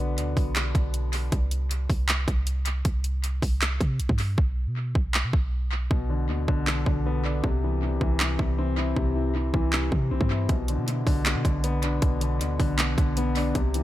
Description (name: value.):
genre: hip hop, trap.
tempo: 157 BPM.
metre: 4/4.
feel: half-time.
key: B phrygian.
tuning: A4 = 440 Hz.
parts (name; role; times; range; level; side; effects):
dark baby grand piano; accompaniment; 0.0-1.3, 5.9-13.8 s; B2 to E4; -28 LUFS; left 3 dB; low-pass filter, tape echo.
clean 808-style bass; bass; 0.0-13.8 s; B1 to C3; -26 LUFS; equal; none.
trap drum kit; drums; 0.2-13.8 s; handclaps, hi-hat, kick drum; -26 LUFS; right 1 dB; overdrive, tape echo.
room: digital ambience.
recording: echo-heavy mix.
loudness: -23 LUFS.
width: side -14 dB against mid.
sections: 0.0-13.8 A section.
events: break 0.0-5.9; hi-hats muted 4.4-10.5.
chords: 0.0 Bm; 1.3 C5; 4.4 Bm; 7.4 C; 10.5 Bm.